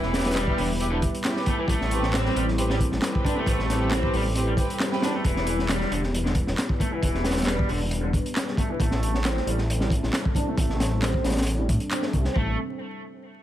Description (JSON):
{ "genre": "breakbeat, breaks", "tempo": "135 BPM", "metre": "4/4", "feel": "swing 53% on 16ths", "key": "A minor", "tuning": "A4 = 441 Hz", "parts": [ { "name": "dark analog pad", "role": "sustained chords", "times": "0.0-12.6 s", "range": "G3 to B4", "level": "-32 LUFS", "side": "left 1 dB", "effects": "chorus, sidechain pumping" }, { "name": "raw garage guitar", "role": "riff", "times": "0.0-12.6 s", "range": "D3 to D4", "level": "-30 LUFS", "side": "equal", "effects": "overdrive, low-pass filter, tape echo" }, { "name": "muted studio string section", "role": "stabs", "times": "0.0-5.0 s", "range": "C4 to B4", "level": "-30 LUFS", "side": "right 2 dB", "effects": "vintage 12-bit sampler grit, tape echo" }, { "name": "detuned saw bass", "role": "bass", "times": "0.0-12.6 s", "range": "E1 to A2", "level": "-27 LUFS", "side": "equal", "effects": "none" }, { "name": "crunchy breakbeat drum kit", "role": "drums", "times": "0.0-12.5 s", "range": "hi-hat, kick drum, snare drum", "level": "-26 LUFS", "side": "equal", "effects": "none" }, { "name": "electronic handclaps", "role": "drums", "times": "0.4-12.0 s", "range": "none", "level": "-34 LUFS", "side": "right 1 dB", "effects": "none" } ], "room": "little or no reverb", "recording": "vinyl crackle", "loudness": "-22 LUFS", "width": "side -12 dB against mid", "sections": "0.0-12.4 A section; 12.4-13.4 B section", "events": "filter sweep on overdriven electric guitar 0.0-12.4", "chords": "0.0 Em; 1.7 Am7; 5.2 Em; 8.8 Am7" }